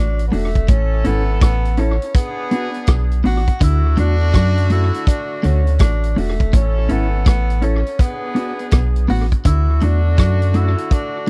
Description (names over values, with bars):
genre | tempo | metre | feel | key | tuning
roots reggae | 82 BPM | 4/4 | swing 64% on 16ths | unclear | A4 = 439 Hz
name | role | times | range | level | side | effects
mellow tenor saxophone | melody | 0.0-11.3 s | A3 to F#4 | -27 LUFS | equal | dub echo
clear horn section | second line | 0.0-11.3 s | D3 to A4 | -31 LUFS | equal | dub echo
clean electric guitar | riff | 0.0-11.3 s | E2 to F#3 | -26 LUFS | equal | none
warm sub bass | bass | 0.0-10.8 s | E1 to F#2 | -19 LUFS | equal | none
vintage drum kit | drums | 0.2-11.3 s | hi-hat, kick drum, rim click | -17 LUFS | equal | none
mellow electric guitar | accompaniment | 0.3-11.3 s | A3 to A4 | -25 LUFS | equal | dub echo
room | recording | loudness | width
little or no reverb | dry, close 1970s-style studio recording | -17 LUFS | mono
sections
0.0-11.3 A section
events
none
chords
0.0 D; 0.7 A; 2.1 Bm; 3.6 D; 6.5 A; 8.0 Bm; 9.4 D